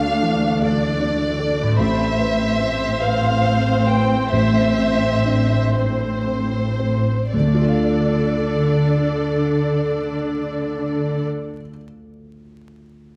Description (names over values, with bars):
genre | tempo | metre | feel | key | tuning
cinematic, emotional film score for orchestra | 36-51 BPM (dotted quarters) | 6/8 | rubato | D dorian | A4 = 441 Hz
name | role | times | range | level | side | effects
warm studio violin section | melody | 0.0-11.2 s | C5 to G5 | -27 LUFS | equal | none
dark grand piano | accompaniment | 0.0-13.2 s | A1 to F5 | -25 LUFS | equal | none
rich studio viola section | accompaniment | 0.0-11.2 s | A3 to C5 | -26 LUFS | equal | none
concert harp | arpeggios | 0.0-11.8 s | A2 to B5 | -31 LUFS | equal | none
dark studio cello section | bass | 0.0-11.2 s | D2 to D3 | -24 LUFS | equal | none
room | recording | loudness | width
moderate scoring stage reverb, RT60 1.6 s | vinyl crackle | -19 LUFS | mono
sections
0.0-7.3 A section; 7.3-10.5 B section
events
slowing down 0.6-7.3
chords
0.0 Dm; 1.8 Amadd9; 7.3 Dm